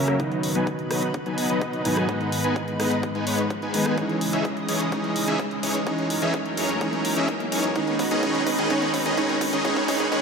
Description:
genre	EDM, festival progressive house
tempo	127 BPM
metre	4/4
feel	straight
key	unclear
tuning	A4 = 440 Hz
part	dark concert grand piano	accompaniment	0.0-10.2 s	G#2 to D#4	-27 LUFS	right 2 dB	sidechain pumping, digital delay
part	lush unison pad	sustained chords	0.0-10.2 s	F#2 to D#5	-30 LUFS	left 1 dB	chorus, sidechain pumping
part	supersaw chords	riff	0.0-10.2 s	D#3 to G#5	-25 LUFS	left 1 dB	sidechain pumping, low-pass filter, digital delay
part	riser	sound effects	0.8-10.2 s	none	-34 LUFS	equal	none
part	big-room dance drum kit	drums	0.1-10.2 s	hi-hat, rim click	-32 LUFS	equal	none
part	electronic kick drum	drums	0.2-10.2 s	none	-34 LUFS	left 1 dB	high-pass filter on kick
room	wet lush hall reverb, RT60 1.8 s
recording	high-pass filter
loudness	-22 LUFS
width	side -5 dB against mid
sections	0.0-10.2 A section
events	build-up 0.0-10.2; filter sweep on supersaw synth 0.0-10.2; filter sweep 0.0-10.2; drum fill 4.0-10.2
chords	0.2 B; 2.1 G#m; 4.0 C#madd9; 5.9 F#; 7.8 B; 9.6 G#m

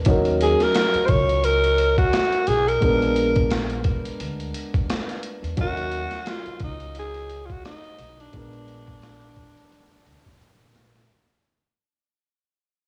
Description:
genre	hip hop, jazz-hop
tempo	87 BPM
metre	4/4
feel	swing 57% on 16ths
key	Eb minor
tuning	A4 = 440 Hz
part	dark grand piano	accompaniment	0.0-11.1 s	Gb3 to Bb4	-29 LUFS	equal	cassette tape
part	upright bass	bass	0.0-11.0 s	Bb1 to Bb2	-30 LUFS	equal	none
part	boom bap sampler-style drum kit	drums	0.0-11.1 s	hi-hat, kick drum, snare drum	-28 LUFS	equal	none
part	growling alto saxophone	melody	0.4-10.8 s	D4 to Db5	-25 LUFS	equal	cassette tape, tape echo
room	moderate spring reverb, RT60 1.8 s, small room ambience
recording	home recording on cassette, studio reverb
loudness	-22 LUFS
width	mono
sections	0.0-11.1 A section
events	fade-out 0.0-11.1; drum fill 10.4-11.1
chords	0.1 Ebm7; 2.8 Bb7b9; 5.6 Ebm7; 8.3 Bb7b9

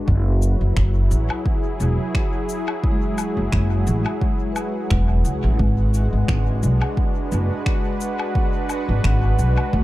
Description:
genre	ambient dub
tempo	87 BPM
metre	4/4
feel	swing 55% on 16ths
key	unclear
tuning	A4 = 440 Hz
part	warm analog pad	sustained chords	0.0-9.8 s	F#3 to B4	-27 LUFS	equal	chorus, vintage 12-bit sampler grit
part	vibraphone with soft mallets	arpeggios	0.0-9.8 s	G#3 to B4	-32 LUFS	left 1 dB	dub echo
part	upright bass	bass	0.0-9.8 s	E1 to D2	-18 LUFS	equal	none
part	electronic kick drum	drums	0.1-9.8 s	none	-22 LUFS	equal	overdrive
part	bubbling stepped-filter texture	texture	0.3-9.8 s	F#4 to F#5	-34 LUFS	right 2 dB	chorus, built-in reverb
part	electronic cabasa, finger snaps and woodblock	drums	0.4-9.7 s	none	-31 LUFS	left 2 dB	overdrive, dub echo
room	little or no reverb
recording	dark, warm production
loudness	-18 LUFS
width	side -16 dB against mid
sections	0.1-9.8 A section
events	none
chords	0.1 F#7sus2; 5.6 G#m7b5

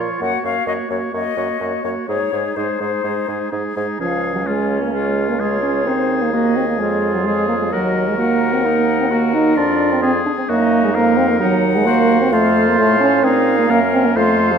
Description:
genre	quick classical-period movement for wind quintet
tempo	130 BPM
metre	4/4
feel	straight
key	Db major, Bb minor from 11.4 s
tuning	A4 = 441 Hz
part	warm oboe	second line	0.0-14.6 s	F4 to Db5	-24 LUFS	left 4 dB	none
part	clear clarinet	accompaniment	0.0-14.6 s	Db4 to Gb4	-23 LUFS	right 8 dB	none
part	mellow French horn	accompaniment	0.0-14.6 s	F3 to Eb4	-18 LUFS	right 1 dB	none
part	warm bassoon	bass	0.0-14.6 s	Db2 to Bb2	-22 LUFS	right 3 dB	none
part	silver concert flute	melody	0.2-14.6 s	C5 to Gb5	-24 LUFS	left 9 dB	none
room	wet scoring stage reverb, RT60 1.6 s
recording	none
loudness	-15 LUFS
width	side -7 dB against mid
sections	0.0-4.0 A section; 4.0-14.6 B section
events	none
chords	0.2 Gb; 2.1 Ab; 4.0 Db; 5.9 Cdim/Eb; 6.8 Db/F; 7.7 Ebm; 9.6 Ddim/F; 10.5 Ebm/Gb; 11.4 Cm7b5/Eb; 12.3 F; 13.2 Bbm

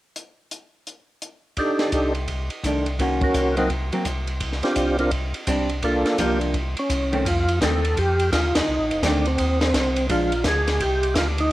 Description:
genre	soul jazz organ trio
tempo	169 BPM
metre	4/4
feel	swing 63% on 8ths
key	F mixolydian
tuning	A4 = 440 Hz
part	compact cocktail drum kit	drums	0.2-11.4 s	hi-hat, kick drum, ride cymbal, snare drum	-26 LUFS	equal	cassette tape
part	percussive tonewheel organ	melody	1.6-11.5 s	Bb3 to Bb4	-23 LUFS	right 1 dB	slow rotary speaker, overdrive, chorus vibrato, cassette tape
part	tonewheel organ	bass	1.9-11.5 s	F1 to F2	-25 LUFS	equal	overdrive, slow rotary speaker
part	vintage hollow-body jazz guitar	accompaniment	2.6-10.3 s	Eb3 to Gb4	-26 LUFS	equal	cassette tape
room	light reverb, small room reverb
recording	home recording on cassette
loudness	-20 LUFS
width	side -16 dB against mid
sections	0.2-1.6 A section; 1.6-7.3 B section; 7.3-11.5 C section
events	band accent 8.5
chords	0.2 N.C.; 1.6 Cm69; 3.0 Ebm7; 3.7 Bbsus2/C; 4.4 Bb69 (rootless); 5.8 Gm7; 6.5 Cm6; 7.3 F7; 10.1 Bb7

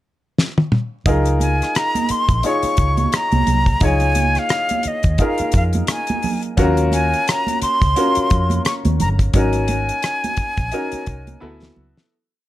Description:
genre	lush 1970s-style soul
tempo	87 BPM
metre	4/4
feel	swing 58% on 16ths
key	Db major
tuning	A4 = 440 Hz
part	damped 70s drum kit	drums	0.4-12.1 s	hi-hat, kick drum, rim click, snare drum, toms	-19 LUFS	equal	none
part	clear baby grand piano	accompaniment	1.1-12.1 s	B3 to Db5	-23 LUFS	left 1 dB	plate reverb
part	vintage muted fingered electric bass	bass	1.1-11.9 s	G1 to F2	-19 LUFS	equal	none
part	congas	percussion	1.1-12.0 s	none	-25 LUFS	right 4 dB	none
part	breathy bright jazz flute	melody	1.4-11.7 s	Eb5 to Db6	-21 LUFS	left 1 dB	plate reverb
room	light reverb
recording	none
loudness	-16 LUFS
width	side -14 dB against mid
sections	0.0-1.1 pickup bar; 1.1-12.1 verse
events	drum fill 0.4-1.1, 11.4-12.1; fade-out 9.3-12.1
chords	0.0 N.C.; 1.1 Db6; 6.6 Ebm9; 9.3 Ab9sus4; 11.4 D6

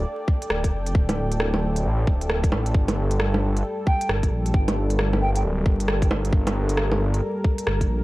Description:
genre	future garage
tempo	134 BPM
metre	4/4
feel	swing 63% on 16ths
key	unclear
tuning	A4 = 440 Hz
part	dark analog pad	sustained chords	0.0-8.0 s	G3 to G5	-29 LUFS	equal	chorus, sidechain pumping
part	swelling detuned saw bass	bass	0.0-8.0 s	D1 to Bb1	-23 LUFS	equal	sidechain pumping
part	electronic kick drum	drums	0.3-7.9 s	none	-21 LUFS	equal	overdrive, vintage 12-bit sampler grit
part	organic electronic drum kit	drums	0.4-7.9 s	bongos, hi-hat, rim click	-26 LUFS	right 1 dB	overdrive, vintage 12-bit sampler grit
part	mellow jazz flute	melody	3.9-5.4 s	G5	-31 LUFS	right 2 dB	tape echo
room	digital ambience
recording	vinyl crackle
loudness	-20 LUFS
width	side -18 dB against mid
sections	0.0-8.0 A section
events	none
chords	0.0 Dmadd11; 2.7 Gmadd9

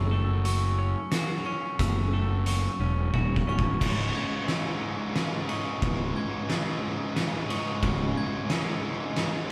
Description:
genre	post-rock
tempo	89 BPM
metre	3/4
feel	straight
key	C# minor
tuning	A4 = 441 Hz
part	glockenspiel with brass mallets	arpeggios	0.0-9.2 s	C#6 to G#6	-39 LUFS	equal	none
part	twelve-string electric guitar	arpeggios	0.0-9.5 s	C#2 to A4	-37 LUFS	equal	none
part	fuzz fingered electric bass	bass	0.0-8.1 s	C#1 to F#1	-30 LUFS	equal	overdrive
part	oversized low-tuned drum kit	drums	0.5-9.3 s	crash cymbal, hi-hat, kick drum, ride cymbal, snare drum	-32 LUFS	equal	none
part	distorted electric guitar	riff	3.8-9.5 s	C#2 to G#2	-35 LUFS	equal	overdrive
room	moderate studio reverb, RT60 0.9 s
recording	band playing live in one room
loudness	-28 LUFS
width	mono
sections	0.0-3.8 A section; 3.8-9.5 B section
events	drum fill 3.1-3.8; build-up 3.8-9.5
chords	0.0 F#m7; 3.8 C#m

